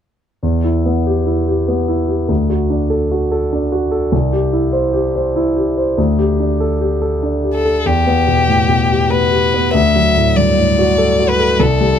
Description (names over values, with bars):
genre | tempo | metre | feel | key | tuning
neoclassical piano and strings | 97 BPM | 3/4 | rubato | E minor | A4 = 440 Hz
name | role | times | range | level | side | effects
warm concert grand piano | accompaniment | 0.4-12.0 s | C2 to C5 | -14 LUFS | equal | none
rich violin | melody | 7.5-12.0 s | G4 to E5 | -15 LUFS | left 3 dB | none
room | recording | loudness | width
little or no reverb | close, detailed microphones | -13 LUFS | side -8 dB against mid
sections
0.4-7.9 A section; 7.9-12.0 B section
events
none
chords
0.4 Em; 2.3 D; 4.1 C; 6.0 Gsus2/D; 7.9 Em; 9.8 D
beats
| 0.43 1.06 1.68 | 2.29 2.91 3.52 | 4.13 4.74 5.36 | 5.98 6.60 7.23 | 7.86 8.49 9.12 | 9.76 10.38 10.99 | 11.61